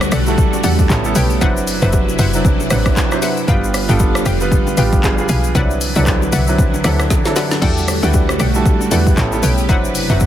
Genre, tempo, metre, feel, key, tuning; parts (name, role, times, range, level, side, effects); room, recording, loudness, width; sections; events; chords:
amapiano; 116 BPM; 4/4; swing 58% on 16ths; E minor; A4 = 440 Hz
warm baby grand piano; accompaniment; 0.0-10.3 s; F#3 to F#5; -20 LUFS; right 3 dB
string machine, full ensemble; sustained chords; 0.0-10.3 s; C3 to B4; -22 LUFS; equal; phaser, ensemble chorus, sidechain pumping
woody log drum bass; bass; 0.0-10.3 s; F1 to E2; -18 LUFS; equal
deep house drum kit; drums; 0.0-10.3 s; crash cymbal, handclaps, hi-hat, kick drum, rim click, shaker, snare drum; -17 LUFS; equal; soft clipping on snare
bongos and congas; percussion; 0.0-10.3 s; -27 LUFS; left 5 dB
analog pluck; stabs; 0.1-10.2 s; G4 to Ab5; -24 LUFS; left 4 dB; chorus, tape echo
little or no reverb; dense, heavily limited modern master; -12 LUFS; side -11 dB against mid
0.0-10.3 A section
drum fill 7.1-7.6
0.0 Em11; 0.9 A9; 1.4 D13/F#; 3.5 G7; 5.0 G7b9; 5.6 Cmaj9#11; 7.6 Em11; 9.2 A9; 9.7 D13/F#